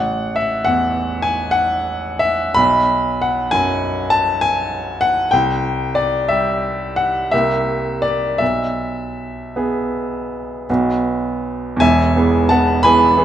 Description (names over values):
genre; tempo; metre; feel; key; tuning
classical, romantic nocturne for solo piano; 52-69 BPM (dotted quarters); 9/8; rubato; E major; A4 = 439 Hz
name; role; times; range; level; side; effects
clear baby grand piano; solo; 0.0-13.2 s; E1 to B5; -15 LUFS; equal; none
room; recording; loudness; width
moderate recital hall reverb, RT60 1.7 s; nothing above 10.3 kHz; -15 LUFS; side -10 dB against mid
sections
0.0-11.8 A section; 11.8-13.2 B section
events
none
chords
0.0 F#m7/A; 2.6 B5; 5.3 C; 7.3 C7; 8.4 E/B; 10.7 B5; 11.8 E